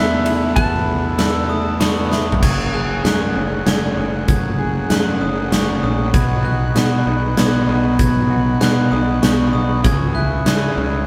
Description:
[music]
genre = post-rock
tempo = 97 BPM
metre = 3/4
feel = straight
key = F# dorian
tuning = A4 = 440 Hz
[part]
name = clean lap steel guitar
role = melody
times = 0.0-1.8 s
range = E5 to A5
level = -26 LUFS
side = equal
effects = none
[part]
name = hand-pumped harmonium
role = sustained chords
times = 0.0-11.1 s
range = E3 to G#5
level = -28 LUFS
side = equal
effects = none
[part]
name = glockenspiel with brass mallets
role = arpeggios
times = 0.0-11.1 s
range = C#6 to G#6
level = -30 LUFS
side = equal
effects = none
[part]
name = mellow electric guitar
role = arpeggios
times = 0.0-11.1 s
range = E2 to G#4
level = -24 LUFS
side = equal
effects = none
[part]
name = fuzz picked electric bass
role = bass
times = 0.0-11.1 s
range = F#1 to C#3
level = -23 LUFS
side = equal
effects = overdrive
[part]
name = huge arena drum kit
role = drums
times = 0.3-10.6 s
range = crash cymbal, hi-hat, kick drum, ride cymbal, snare drum, toms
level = -21 LUFS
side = equal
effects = none
[sound]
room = wet small room reverb, RT60 0.6 s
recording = band playing live in one room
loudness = -17 LUFS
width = mono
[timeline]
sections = 0.0-2.4 A section; 2.4-11.1 B section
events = drum fill 2.1-2.4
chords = 0.0 Esus4; 2.4 F#madd9; 6.1 B; 9.8 C#m

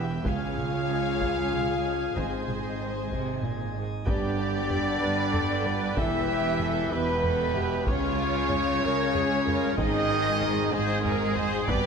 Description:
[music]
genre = cinematic, epic orchestral film score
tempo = 63 BPM (dotted quarters)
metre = 6/8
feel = straight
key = unclear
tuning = A4 = 440 Hz
[part]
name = dark symphonic violin section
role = second line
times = 0.0-11.9 s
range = D4 to G#5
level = -38 LUFS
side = left 2 dB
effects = none
[part]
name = clear symphonic viola section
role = accompaniment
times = 0.0-11.9 s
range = E#4 to D5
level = -34 LUFS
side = right 1 dB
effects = none
[part]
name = chamber organ, sparkling flutes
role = sustained chords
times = 0.0-11.9 s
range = B3 to G#5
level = -36 LUFS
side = right 1 dB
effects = none
[part]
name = clear trombone section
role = sustained chords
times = 0.0-11.9 s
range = Ab2 to G#3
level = -36 LUFS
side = right 6 dB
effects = none
[part]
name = rich symphonic double bass section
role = bass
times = 0.0-11.9 s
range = E1 to C#2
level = -34 LUFS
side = right 5 dB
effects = none
[part]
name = warm symphonic cello section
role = bass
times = 0.0-11.9 s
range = C#2 to C3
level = -34 LUFS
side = right 4 dB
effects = none
[part]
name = warm symphonic violin section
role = melody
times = 0.3-11.9 s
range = Ab4 to E#5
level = -38 LUFS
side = left 3 dB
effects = none
[part]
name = dark French horn section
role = sustained chords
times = 0.3-11.9 s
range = Ab3 to E#4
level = -31 LUFS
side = left 6 dB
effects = none
[part]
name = warm trumpet section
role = stabs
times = 0.3-11.9 s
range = Ab4 to E#5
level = -32 LUFS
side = right 2 dB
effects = none
[part]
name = taiko ensemble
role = drums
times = 0.3-11.9 s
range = none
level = -33 LUFS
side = equal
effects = none
[part]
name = mellow hollow silver concert flute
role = second line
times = 4.1-11.9 s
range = Ab4 to E5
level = -34 LUFS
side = left 1 dB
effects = none
[sound]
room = wet concert hall reverb, RT60 1.9 s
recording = none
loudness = -24 LUFS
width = side -6 dB against mid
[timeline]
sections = 0.0-4.1 A section; 4.1-11.9 B section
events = none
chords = 0.3 C#; 2.2 Ab; 4.1 G; 6.0 Em; 7.9 C#; 9.8 Ab

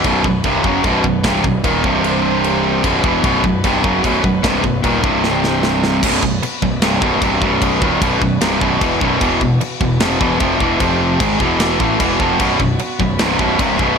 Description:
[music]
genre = heavy metal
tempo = 151 BPM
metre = 4/4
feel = straight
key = unclear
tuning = A4 = 442 Hz
[part]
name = rich chamber string section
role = sustained chords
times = 0.0-14.0 s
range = E3 to C5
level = -27 LUFS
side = left 1 dB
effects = none
[part]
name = distorted electric guitar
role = riff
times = 0.0-14.0 s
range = B1 to A3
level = -18 LUFS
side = left 11 dB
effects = overdrive
[part]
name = tight distorted guitar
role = riff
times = 0.0-14.0 s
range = B1 to A3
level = -17 LUFS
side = right 10 dB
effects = distortion
[part]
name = fuzz picked electric bass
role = bass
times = 0.0-14.0 s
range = B0 to A1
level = -23 LUFS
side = equal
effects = overdrive
[part]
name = tight metal drum kit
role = drums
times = 0.0-13.9 s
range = china cymbal, crash cymbal, kick drum, snare drum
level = -21 LUFS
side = equal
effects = none
[sound]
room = light reverb, small room ambience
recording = bright 1980s-style digital production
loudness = -13 LUFS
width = side -6 dB against mid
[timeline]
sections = 0.0-6.0 A section; 6.0-14.0 B section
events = half time 0.0-6.0; drum fill 5.2-6.0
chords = 0.0 B; 1.8 C5; 2.8 B; 5.0 C5; 6.0 B; 9.2 E5; 10.8 F5; 11.2 E5; 12.4 B5

